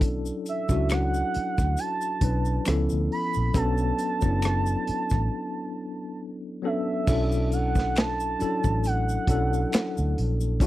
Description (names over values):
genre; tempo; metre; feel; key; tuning
R&B, neo-soul; 68 BPM; 4/4; swing 54% on 16ths; B minor; A4 = 440 Hz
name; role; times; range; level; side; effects
tine electric piano; accompaniment; 0.0-10.7 s; E#3 to B4; -28 LUFS; left 2 dB; fast stereo tremolo
vintage muted fingered electric bass; bass; 0.0-10.7 s; F#1 to D2; -26 LUFS; equal; none
crunchy breakbeat drum kit; drums; 0.0-10.7 s; crash cymbal, finger snaps, hi-hat, kick drum, rim click, snare drum; -26 LUFS; equal; none
tube shaker and finger snaps; percussion; 0.0-10.7 s; none; -40 LUFS; left 6 dB; none
gliding portamento lead; melody; 0.5-10.7 s; C#5 to B5; -30 LUFS; right 4 dB; chorus
room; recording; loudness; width
little or no reverb; dry, close 1970s-style studio recording; -23 LUFS; side -15 dB against mid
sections
0.0-7.1 A section; 7.1-10.7 B section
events
break 5.3-7.1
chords
0.0 Bm11; 2.7 C#7alt; 3.5 Bm9; 7.1 Bm11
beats
| 0.01 0.89 1.77 2.66 | 3.54 4.42 5.30 6.19 | 7.07 7.95 8.83 9.72 | 10.60